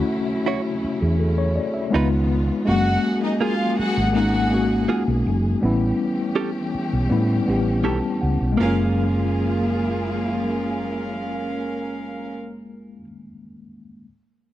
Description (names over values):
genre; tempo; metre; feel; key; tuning
soul; 81 BPM; 4/4; straight; F# major; A4 = 439 Hz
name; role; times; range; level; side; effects
tine electric piano; accompaniment; 0.0-14.1 s; G3 to A5; -23 LUFS; left 2 dB; medium stereo tremolo
warm studio string section; sustained chords; 0.0-12.3 s; C#3 to G#4; -31 LUFS; equal; none
direct-recorded clean electric guitar; riff; 0.5-13.1 s; A#3 to C#5; -28 LUFS; right 6 dB; none
hollow-body short-scale fingered electric bass; bass; 0.8-13.0 s; F#1 to A2; -23 LUFS; right 1 dB; none
warm studio violin section; second line; 2.7-12.3 s; C#4 to F#5; -27 LUFS; right 1 dB; none
room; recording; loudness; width
studio ambience; dry, close 1970s-style studio recording; -19 LUFS; side -13 dB against mid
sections
0.0-8.6 A section; 8.6-11.5 B section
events
tine electric piano fill 7.5-8.6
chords
0.0 Dmaj9; 1.9 C#9; 2.7 F#add9; 5.6 A7; 8.6 F#maj9